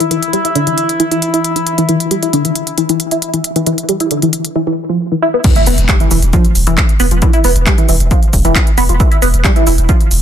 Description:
driving peak-time techno; 135 BPM; 4/4; straight; A4 = 440 Hz
tight sequenced synth; riff; 0.0-10.0 s; D3 to E4; -15 LUFS; equal; chorus, phaser, sidechain pumping, tape echo
analog drone; drone; 0.0-4.6 s; E3 to E4; -19 LUFS; left 2 dB; chorus, sidechain pumping
techno drum kit; drums; 0.0-10.2 s; crash cymbal, handclaps, hi-hat, shaker; -18 LUFS; equal; sidechain pumping on hats, sidechain pumping on perc, sidechain pumping on cymbals
electronic kick drum; drums; 5.4-10.0 s; -12 LUFS; equal
impact; sound effects; 5.4-7.2 s; -22 LUFS; equal
saturated sub bass; bass; 5.7-10.2 s; E1; -13 LUFS; equal; overdrive, sidechain pumping, low-pass filter
light reverb; dense, heavily limited modern master; -10 LUFS; side -9 dB against mid
0.0-5.4 A section; 5.4-10.2 B section
filter sweep on synth arpeggio sound 0.0-5.4; drop 5.4-10.2; impact 5.4-7.2
0.0 N.C.; 5.4 E5

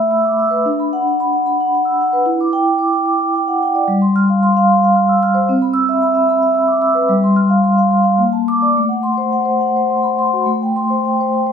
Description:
classical, contemporary piece for solo vibraphone; 110 BPM; 3/4; rubato; A dorian; A4 = 440 Hz
vibraphone with soft mallets; solo; 0.0-11.5 s; G3 to F6; -13 LUFS; equal
moderate scoring stage reverb, RT60 1.6 s; minimal, uncompressed stereo recording; -13 LUFS; side -7 dB against mid
0.0-10.5 A section; 10.5-11.5 A section
0.0 Asus24; 0.7 D69; 2.3 Em9; 3.9 G7sus4; 5.5 Cmaj7; 7.1 G7sus4; 8.2 Bbmaj7; 8.8 Am6; 10.5 Am7

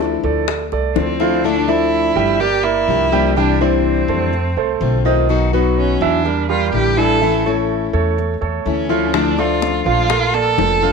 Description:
latin, Cuban son and guajira; 125 BPM; 4/4; straight; D minor; A4 = 442 Hz
fingerpicked plugged-in steel-string acoustic guitar; accompaniment; 0.0-10.9 s; B2 to G4; -19 LUFS; left 13 dB
warm concert grand piano; arpeggios; 0.0-10.9 s; Eb3 to G5; -20 LUFS; right 12 dB
upright bass; bass; 0.0-10.9 s; F1 to F2; -21 LUFS; equal
bongos; percussion; 0.0-1.4, 9.1-10.9 s; -24 LUFS; left 15 dB
warm violin; melody; 1.0-10.9 s; C4 to A4; -19 LUFS; right 3 dB
light reverb, studio reverb; 1960s-style stereo with parts hard left and right; -14 LUFS; side -5 dB against mid
0.0-1.4 A section; 1.4-10.9 A section
0.0 Dmadd9; 2.4 Gm7; 3.4 Cadd9; 4.3 F6; 5.3 B; 6.3 Em7b5; 7.2 A; 9.1 Dmadd9; 10.1 Bbmaj7

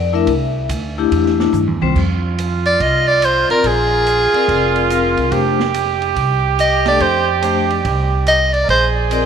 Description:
jazz, small-group swing and bop; 142 BPM; 4/4; swing 66% on 8ths; A4 = 440 Hz
vibraphone with medium hard mallets; accompaniment; 0.0-9.3 s; G3 to F5; -19 LUFS; left 8 dB
upright bass; bass; 0.0-9.3 s; F1 to G2; -20 LUFS; right 1 dB
open jazz drum kit; drums; 0.3-9.2 s; crash cymbal, hi-hat, kick drum, ride cymbal, snare drum, toms; -27 LUFS; right 6 dB
warm trumpet; second line; 2.0-9.3 s; F4 to Bb4; -19 LUFS; right 11 dB
bright soprano saxophone; melody; 2.7-8.9 s; Ab4 to Eb5; -15 LUFS; equal; tape echo
moderate echo chamber reverb, RT60 2.0 s, small room reverb; 1960s-style stereo with parts hard left and right; -13 LUFS; side -7 dB against mid
0.0-2.0 A section; 2.0-9.3 B section
drum fill 1.5-2.0
0.3 Cadd9; 2.0 F5; 3.6 Bb9; 5.3 Fadd9; 8.7 Bb9

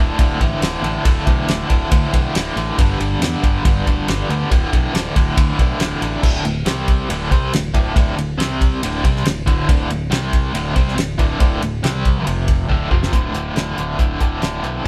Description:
classic rock; 139 BPM; 4/4; straight; A4 = 440 Hz
overdriven semi-hollow guitar; riff; 0.0-14.9 s; D2 to C4; -23 LUFS; equal; tremolo
growling fingered electric bass; bass; 0.0-14.9 s; D1 to E2; -26 LUFS; equal; overdrive
damped 70s drum kit; drums; 0.2-14.9 s; crash cymbal, hi-hat, kick drum, ride cymbal, snare drum; -20 LUFS; equal
light reverb; band playing live in one room; -18 LUFS; mono
0.0-6.2 A section; 6.2-13.1 B section; 13.1-14.9 C section
drum fill 12.7-13.1
0.0 D5; 2.8 G5; 4.5 D5; 6.7 C5; 7.1 D5; 8.4 C5; 8.8 D5; 10.1 C5; 10.5 D5; 11.8 C5; 12.3 F5; 12.7 D5

